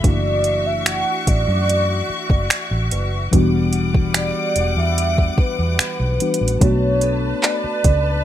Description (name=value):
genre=contemporary R&B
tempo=73 BPM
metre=4/4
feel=straight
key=B minor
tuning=A4 = 445 Hz
part: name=mellow horn-like synth lead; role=melody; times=0.0-8.2 s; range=B4 to F#5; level=-23 LUFS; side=right 1 dB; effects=chorus, digital delay
part: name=muted felt-like synth keys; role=accompaniment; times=0.0-8.2 s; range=E3 to F#4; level=-24 LUFS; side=left 2 dB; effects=chorus
part: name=bright studio string section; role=sustained chords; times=0.0-8.2 s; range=G3 to D6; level=-26 LUFS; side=left 3 dB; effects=none
part: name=vintage muted fingered electric bass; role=bass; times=0.0-8.2 s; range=E1 to F#2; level=-20 LUFS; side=equal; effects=none
part: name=smooth R&B drum kit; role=drums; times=0.0-8.0 s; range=finger snaps, handclaps, hi-hat, kick drum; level=-17 LUFS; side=equal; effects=overdrive
part: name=synth chime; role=texture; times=2.9-8.2 s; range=A4 to B4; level=-38 LUFS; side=right 6 dB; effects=none
room=digital ambience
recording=rough home demo mix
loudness=-16 LUFS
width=side -11 dB against mid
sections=0.0-6.6 A section; 6.6-8.2 B section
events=none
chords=0.0 Dmaj9/F#; 3.3 Em9; 6.6 Bm9